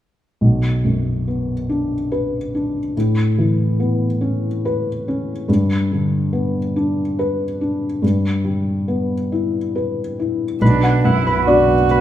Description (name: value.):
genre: neoclassical piano and strings.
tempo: 71 BPM.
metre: 3/4.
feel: rubato.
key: B minor.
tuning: A4 = 439 Hz.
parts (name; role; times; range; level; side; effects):
felt-muted upright piano; accompaniment; 0.4-12.0 s; B1 to D5; -17 LUFS; left 1 dB; none.
muted cello; second line; 10.6-12.0 s; D4 to F#4; -18 LUFS; right 8 dB; none.
Celtic harp; arpeggios; 10.6-12.0 s; B4 to F#5; -21 LUFS; right 1 dB; none.
muted double bass; bass; 10.6-12.0 s; B1; -24 LUFS; equal; none.
room: wet recital hall reverb, RT60 1.5 s.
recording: minimal, uncompressed stereo recording.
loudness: -16 LUFS.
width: side -12 dB against mid.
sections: 0.4-10.6 A section; 10.6-12.0 B section.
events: none.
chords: 0.4 Bm; 2.9 Aadd9; 5.5 G; 8.0 Em/G; 10.6 Bm.